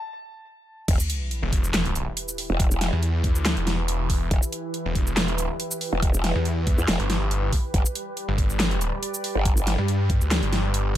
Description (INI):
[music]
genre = heavy wobble dubstep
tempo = 140 BPM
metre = 4/4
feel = swing 54% on 16ths, half-time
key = E minor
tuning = A4 = 441 Hz
[part]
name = dark concert grand piano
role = melody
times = 0.0-0.8 s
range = A5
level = -38 LUFS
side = left 3 dB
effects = digital delay
[part]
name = supersaw pad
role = sustained chords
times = 0.9-11.0 s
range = E3 to D5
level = -33 LUFS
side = equal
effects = phaser, sidechain pumping, low-pass filter
[part]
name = growl bass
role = bass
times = 0.9-9.8 s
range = E1 to E2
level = -24 LUFS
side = equal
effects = chorus, overdrive
[part]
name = dubstep drum kit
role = drums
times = 0.9-10.8 s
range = crash cymbal, handclaps, hi-hat, shaker, snare drum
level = -27 LUFS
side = equal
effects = overdrive
[part]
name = electronic kick drum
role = drums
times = 0.9-10.2 s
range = none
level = -22 LUFS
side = equal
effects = overdrive
[part]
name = sub drop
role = sound effects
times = 0.9-2.6 s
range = none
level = -30 LUFS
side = equal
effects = none
[part]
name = snarling distorted saw bass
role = bass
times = 1.4-11.0 s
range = E1 to G2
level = -24 LUFS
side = equal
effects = distortion, overdrive
[sound]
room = little or no reverb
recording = high-pass filter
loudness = -22 LUFS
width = side -12 dB against mid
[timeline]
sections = 0.9-11.0 A section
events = break 0.0-0.9; drop 0.9-11.0; impact 0.9-2.6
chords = 0.0 N.C.; 0.9 Em; 7.7 G